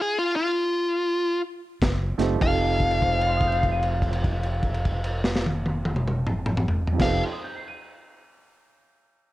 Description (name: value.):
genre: electric blues shuffle.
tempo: 98-116 BPM.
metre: 4/4.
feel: swing 63% on 8ths.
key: F mixolydian.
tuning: A4 = 435 Hz.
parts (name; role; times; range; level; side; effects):
dark smooth lead guitar; melody; 0.0-7.2 s; F4 to F5; -25 LUFS; left 1 dB; overdrive, plate reverb.
fingered electric bass; bass; 1.8-7.2 s; F1 to F#1; -27 LUFS; equal; none.
crunchy breakbeat drum kit; drums; 1.8-7.1 s; crash cymbal, hi-hat, kick drum, snare drum, toms; -26 LUFS; equal; none.
dark concert grand piano; accompaniment; 2.2-7.7 s; F2 to Eb7; -30 LUFS; right 4 dB; plate reverb.
room: light reverb.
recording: none.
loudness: -22 LUFS.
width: side -16 dB against mid.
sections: 0.0-2.4 A section; 2.4-7.3 B section.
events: slowing down 0.0-2.4; stop 0.0-1.8; held note 2.4-6.9.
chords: 0.0 N.C.; 1.8 F#dim7; 2.4 F9.